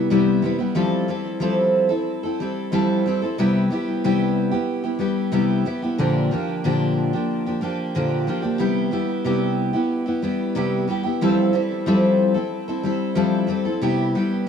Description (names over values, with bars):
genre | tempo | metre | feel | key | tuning
indie pop | 92 BPM | 4/4 | straight | C major | A4 = 438 Hz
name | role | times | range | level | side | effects
picked steel-string acoustic guitar | solo | 0.0-14.5 s | Bb2 to A4 | -19 LUFS | left 1 dB | wide subtle chorus, warbly pitch drift, tape echo
room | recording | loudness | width
moderate studio reverb, RT60 0.7 s | rough home demo mix | -19 LUFS | side -7 dB against mid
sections
0.0-14.5 A section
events
none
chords
0.0 Cmaj7; 0.8 Fmaj9; 3.4 Cmaj7; 6.0 Bb6; 8.6 Cmaj7; 11.2 Fmaj9; 13.8 Cmaj7